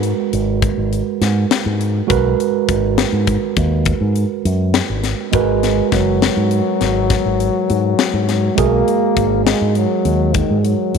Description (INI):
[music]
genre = progressive instrumental, band music in an uneven meter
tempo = 204 BPM (eighths)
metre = 11/8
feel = straight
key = G# minor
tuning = A4 = 440 Hz
[part]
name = bright tine electric piano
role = accompaniment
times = 0.0-11.0 s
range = G#3 to B4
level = -19 LUFS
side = right 14 dB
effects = none
[part]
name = fingered electric bass with an envelope filter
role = bass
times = 0.0-11.0 s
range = F#1 to G#2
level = -18 LUFS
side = left 1 dB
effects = none
[part]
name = tight metal drum kit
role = drums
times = 0.0-11.0 s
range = hi-hat, kick drum, snare drum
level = -20 LUFS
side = left 6 dB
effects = none
[part]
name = mellow trombone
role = second line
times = 5.3-11.0 s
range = D#3 to A#3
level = -19 LUFS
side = left 11 dB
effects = none
[sound]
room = light reverb, small room ambience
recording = 1960s-style stereo with parts hard left and right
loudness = -14 LUFS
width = side -6 dB against mid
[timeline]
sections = 0.0-5.3 A section; 5.3-11.0 B section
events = none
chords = 0.0 G#m9